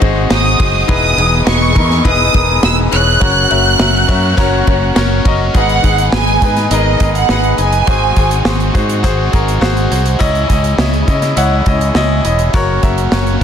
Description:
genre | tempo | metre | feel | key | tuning
piano-driven pop | 103 BPM | 4/4 | straight | G# minor | A4 = 440 Hz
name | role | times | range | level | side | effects
clear concert grand piano | accompaniment | 0.0-13.4 s | G#2 to F#5 | -17 LUFS | left 4 dB | none
warm studio string section | sustained chords | 0.0-13.4 s | C#3 to D#5 | -24 LUFS | left 2 dB | none
biting overdriven guitar | riff | 0.0-13.4 s | C#3 to D#5 | -22 LUFS | right 4 dB | phaser
fingered electric bass | bass | 0.0-13.4 s | E1 to C#3 | -16 LUFS | equal | none
modern studio drum kit | drums | 0.0-13.4 s | hi-hat, kick drum, ride cymbal, snare drum | -16 LUFS | equal | none
warm studio violin section | melody | 0.3-8.7 s | D#5 to F#6 | -15 LUFS | right 3 dB | none
room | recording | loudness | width
light reverb, small room ambience | dense, heavily limited modern master | -10 LUFS | side -8 dB against mid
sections
0.0-5.5 A section; 5.5-13.4 B section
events
none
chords
0.0 G#7; 0.9 Emaj7; 3.2 F#; 5.5 G#m; 7.9 G#7; 10.2 C#madd9; 12.5 F#

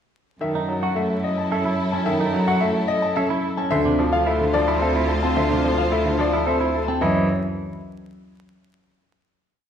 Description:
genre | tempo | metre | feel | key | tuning
classical, minimalist pattern music | 109 BPM | 3/4 | straight | unclear | A4 = 439 Hz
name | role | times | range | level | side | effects
clear baby grand piano | melody | 0.4-7.3 s | A4 to A5 | -26 LUFS | left 5 dB | none
bright grand piano | accompaniment | 0.4-7.3 s | C3 to C#4 | -24 LUFS | equal | none
rich studio string section | sustained chords | 0.4-6.8 s | E4 to C5 | -29 LUFS | left 2 dB | none
rich cello | bass | 0.4-7.3 s | D2 to F#2 | -25 LUFS | right 1 dB | none
clean electric guitar | arpeggios | 0.6-7.3 s | C4 to C5 | -26 LUFS | right 4 dB | none
room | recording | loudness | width
wet recital hall reverb, RT60 1.5 s | recorded in a church or concert hall, vinyl crackle | -19 LUFS | side -8 dB against mid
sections
0.4-7.0 A section; 7.0-8.7 final chord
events
none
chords
0.4 F#m7; 3.7 Dm7; 7.0 N.C.

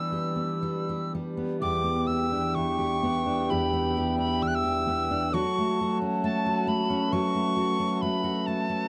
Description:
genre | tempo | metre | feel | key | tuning
celtic folk, Celtic slow air | 58-69 BPM | 4/4 | rubato | E dorian | A4 = 440 Hz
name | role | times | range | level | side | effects
bright reedy mid whistle | melody | 0.0-8.9 s | A5 to F#6 | -32 LUFS | equal | none
picked steel-string acoustic guitar | accompaniment | 0.0-8.9 s | E2 to G4 | -30 LUFS | equal | none
hand-pumped harmonium | sustained chords | 0.0-8.9 s | G3 to E5 | -37 LUFS | equal | none
baroque flute | second line | 1.6-8.6 s | G5 to A5 | -35 LUFS | equal | none
room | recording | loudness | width
light reverb | dark, warm production, lossy compression artefacts | -27 LUFS | mono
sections
0.0-1.6 A section; 1.6-8.9 A section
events
none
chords
0.0 Em7; 5.3 F#m

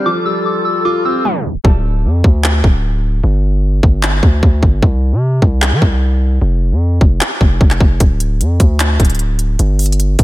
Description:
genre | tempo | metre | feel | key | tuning
hip hop, trap | 151 BPM | 4/4 | half-time | unclear | A4 = 440 Hz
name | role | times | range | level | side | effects
soft synth bell | melody | 0.0-1.6 s | A5 to E6 | -19 LUFS | left 1 dB | chorus, low-pass filter, ping-pong delay
bright concert grand piano | accompaniment | 0.0-1.7 s | F3 to F4 | -19 LUFS | right 1 dB | low-pass filter
dark woodwind section | sustained chords | 0.0-1.6 s | G3 to A4 | -20 LUFS | left 3 dB | low-pass filter
distorted 808-style bass | bass | 1.6-10.2 s | D1 to E3 | -13 LUFS | equal | distortion
trap drum kit | drums | 1.6-10.2 s | handclaps, hi-hat, kick drum | -12 LUFS | equal | none
room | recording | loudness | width
light reverb | tape stop | -11 LUFS | side -17 dB against mid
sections
0.0-1.6 A section; 1.6-10.2 B section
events
tape stop 1.2-1.6; hi-hats muted 1.6-8.0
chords
0.1 Fadd9; 1.6 N.C.; 3.2 G5; 4.8 N.C.; 9.6 G5

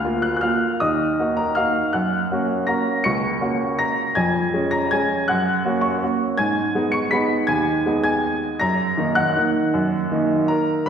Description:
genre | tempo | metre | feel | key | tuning
classical, piano waltz | 161 BPM | 3/4 | uneven beats, rubato | Eb minor | A4 = 440 Hz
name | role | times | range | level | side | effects
clear upright piano | solo | 0.0-10.9 s | Db2 to Db7 | -18 LUFS | equal | none
room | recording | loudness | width
wet scoring stage reverb, RT60 1.6 s | heard from further back in the room | -18 LUFS | side -7 dB against mid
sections
0.0-10.9 A section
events
none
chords
0.0 Bb/D; 0.8 Ebm; 1.9 Gb; 4.2 Db/F; 5.3 Gb; 6.4 Abm; 8.6 Ebm/Gb

